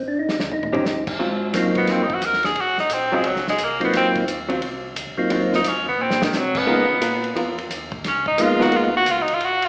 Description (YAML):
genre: soul jazz organ trio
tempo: 175 BPM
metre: 4/4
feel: swing 64% on 8ths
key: Ab mixolydian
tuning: A4 = 440 Hz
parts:
  - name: percussive tonewheel organ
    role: melody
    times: 0.0-8.9 s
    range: Gb3 to F4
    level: -22 LUFS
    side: equal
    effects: slow rotary speaker
  - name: mellow tonewheel organ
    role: bass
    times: 0.0-9.7 s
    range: Ab1 to Db3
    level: -33 LUFS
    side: equal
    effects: chorus vibrato, slow rotary speaker
  - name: warm soul drum kit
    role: drums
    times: 0.3-9.7 s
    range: crash cymbal, hi-hat, kick drum, ride cymbal, snare drum, toms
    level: -27 LUFS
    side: equal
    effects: none
  - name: archtop guitar, miked and amplified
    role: accompaniment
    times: 0.7-8.7 s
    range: Eb3 to C5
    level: -26 LUFS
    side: equal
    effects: none
  - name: bright tenor saxophone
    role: melody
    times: 1.8-9.7 s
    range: Eb3 to Bb4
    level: -19 LUFS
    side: equal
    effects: none
room: wet recital hall reverb, RT60 1.3 s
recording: recorded in a church or concert hall, small speaker sound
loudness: -18 LUFS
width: side -39 dB against mid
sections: 0.0-1.2 A section; 1.2-9.7 B section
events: drum fill 0.2-0.8, 6.0-6.3; tenor saxophone solo 1.2-9.7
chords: 0.0 Ab5; 0.5 Eb6; 1.2 Ab13; 6.7 Db13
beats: 0.16 0.51 0.85 | 1.19 1.53 1.88 2.22 | 2.56 2.90 3.25 3.59 | 3.93 4.27 4.62 4.96 | 5.30 5.64 5.99 6.33 | 6.67 7.01 7.35 7.70 | 8.04 8.38 8.72 9.06 | 9.41